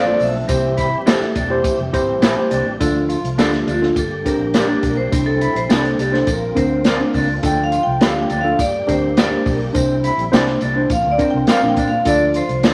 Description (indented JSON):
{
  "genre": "uptempo 1960s-style soul",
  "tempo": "104 BPM",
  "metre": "4/4",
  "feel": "straight",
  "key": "D minor",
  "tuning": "A4 = 440 Hz",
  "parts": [
    { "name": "vibraphone with medium hard mallets", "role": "melody", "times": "0.0-12.7 s", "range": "F4 to G5", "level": "-23 LUFS", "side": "equal", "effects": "none" },
    { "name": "tonewheel organ", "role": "sustained chords", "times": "0.0-12.7 s", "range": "D3 to A4", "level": "-32 LUFS", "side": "equal", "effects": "slow rotary speaker, overdrive, chorus vibrato" },
    { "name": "electric guitar through a small old amp", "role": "riff", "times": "0.0-12.7 s", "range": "C4 to F4", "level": "-28 LUFS", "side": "equal", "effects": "none" },
    { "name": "vintage muted fingered electric bass", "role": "bass", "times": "0.0-12.7 s", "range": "E1 to Bb2", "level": "-27 LUFS", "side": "equal", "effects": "none" },
    { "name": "tine electric piano", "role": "accompaniment", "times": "0.1-12.7 s", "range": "C4 to C5", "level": "-22 LUFS", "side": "equal", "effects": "none" },
    { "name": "swinging big-band drum kit", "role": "drums", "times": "0.2-12.7 s", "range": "hi-hat, kick drum, snare drum", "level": "-22 LUFS", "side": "equal", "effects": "none" },
    { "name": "tambourine", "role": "percussion", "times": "0.2-12.7 s", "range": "none", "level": "-39 LUFS", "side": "equal", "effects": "none" },
    { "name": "electric guitar through a small old amp", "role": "stabs", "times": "1.1-12.7 s", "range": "C4 to E5", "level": "-25 LUFS", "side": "equal", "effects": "none" }
  ],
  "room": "moderate studio reverb, RT60 0.8 s",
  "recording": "vinyl crackle",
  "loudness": "-17 LUFS",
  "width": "mono",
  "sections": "0.0-2.8 A section; 2.8-12.7 B section",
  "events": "vibraphone solo 2.8-12.7",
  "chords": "0.5 C; 2.8 Dm; 4.0 Gm; 5.1 Cadd9; 6.3 Bbadd9; 7.4 Dm; 8.6 Gm; 9.8 Cadd9; 10.9 Bbadd9; 12.1 Dm"
}